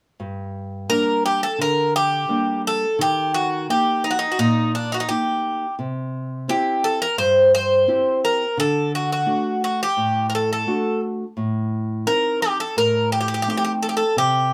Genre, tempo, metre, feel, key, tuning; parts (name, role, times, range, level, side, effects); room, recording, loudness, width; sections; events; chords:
greek folk, Greek bouzouki band; 86 BPM; 4/4; straight; G harmonic minor; A4 = 440 Hz
nylon-string guitar; accompaniment; 0.2-14.5 s; G2 to G4; -27 LUFS; equal
Greek bouzouki; melody; 0.9-14.5 s; D4 to C5; -21 LUFS; equal
wet small room reverb, RT60 0.5 s; band playing live in one room; -21 LUFS; mono
0.2-14.5 A section
0.2 Gm; 3.0 Eb; 5.8 C; 8.6 D; 11.4 Adim